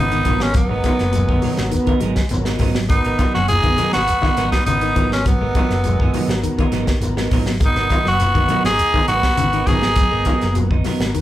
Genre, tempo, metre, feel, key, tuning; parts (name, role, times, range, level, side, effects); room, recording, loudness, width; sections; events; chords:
afrobeat; 102 BPM; 4/4; straight; G# minor; A4 = 440 Hz
growling tenor saxophone; melody; 0.0-10.6 s; B3 to G#4; -19 LUFS; equal
warm trumpet; second line; 0.0-10.6 s; F#3 to D#4; -29 LUFS; right 4 dB
electric guitar at the edge of break-up; arpeggios; 0.0-11.2 s; C#3 to G#3; -26 LUFS; left 3 dB
hollow-body short-scale fingered electric bass; bass; 0.0-11.1 s; F#1 to G#1; -23 LUFS; equal
clean electric guitar; stabs; 0.1-11.0 s; F#3 to A#4; -26 LUFS; right 5 dB
tight funk drum kit; drums; 0.1-11.2 s; hi-hat, kick drum, snare drum; -20 LUFS; equal
congas; percussion; 0.1-11.2 s; -26 LUFS; left 2 dB
overdriven combo organ; accompaniment; 0.3-11.2 s; B3 to A#4; -29 LUFS; left 1 dB
shekere; percussion; 0.3-11.2 s; -28 LUFS; equal
warm bass trombone; second line; 1.1-7.5 s; D#3 to B3; -28 LUFS; right 1 dB
moderate large studio reverb, RT60 0.8 s; band playing live in one room; -15 LUFS; side -14 dB against mid
0.0-11.2 A section
0.0 G#m9